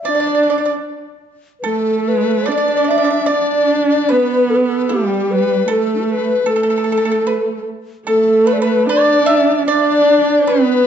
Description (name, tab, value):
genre	chinese traditional, Chinese chamber ensemble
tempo	75 BPM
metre	4/4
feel	rubato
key	D zhi mode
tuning	A4 = 441 Hz
part	mellow low xiao	melody	0.0-10.9 s	D4 to E5	-18 LUFS	left 1 dB	none
part	bright reedy large dizi	second line	0.0-10.9 s	G4 to E5	-20 LUFS	left 6 dB	none
part	warm horsehead fiddle	second line	0.0-10.9 s	G3 to D4	-17 LUFS	right 3 dB	none
part	pipa	second line	0.1-10.9 s	G4 to E5	-21 LUFS	right 6 dB	none
room	wet recital hall reverb, RT60 1.6 s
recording	dark, warm production, nothing above 7.9 kHz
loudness	-13 LUFS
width	side -8 dB against mid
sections	0.0-1.7 A section; 1.7-10.9 B section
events	none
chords	none